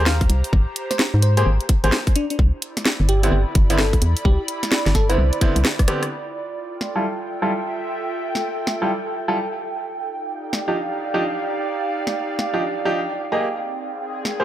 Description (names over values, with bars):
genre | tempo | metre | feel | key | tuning
UK garage, two-step garage | 129 BPM | 4/4 | swing 63% on 16ths | F lydian | A4 = 439 Hz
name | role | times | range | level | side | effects
bright baby grand piano | stabs | 0.0-14.4 s | D3 to Eb5 | -24 LUFS | right 1 dB | low-pass filter, dub echo
organ-like FM bass | bass | 0.0-5.6 s | G1 to Ab2 | -18 LUFS | equal | none
airy breathy pad | texture | 0.0-14.4 s | C4 to B5 | -28 LUFS | right 2 dB | chorus, sidechain pumping
bell-like FM electric piano | melody | 0.1-5.4 s | D4 to F5 | -27 LUFS | equal | chorus, phaser, dub echo
garage drum kit | drums | 0.1-14.4 s | hi-hat, rim click, snare drum | -22 LUFS | equal | none
electronic kick drum | drums | 0.2-5.9 s | none | -17 LUFS | equal | none
ethereal airy pad | sustained chords | 7.3-14.4 s | D5 to G5 | -31 LUFS | right 2 dB | ensemble chorus, built-in reverb, sidechain pumping
room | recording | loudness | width
light reverb | none | -19 LUFS | side -12 dB against mid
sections
0.0-6.1 A section; 6.1-14.4 B section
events
drum fill 5.6-6.1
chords
0.0 Abmaj9; 2.2 Cmaj9; 6.1 Fmaj9; 9.8 Ebmaj9; 13.3 Abmaj9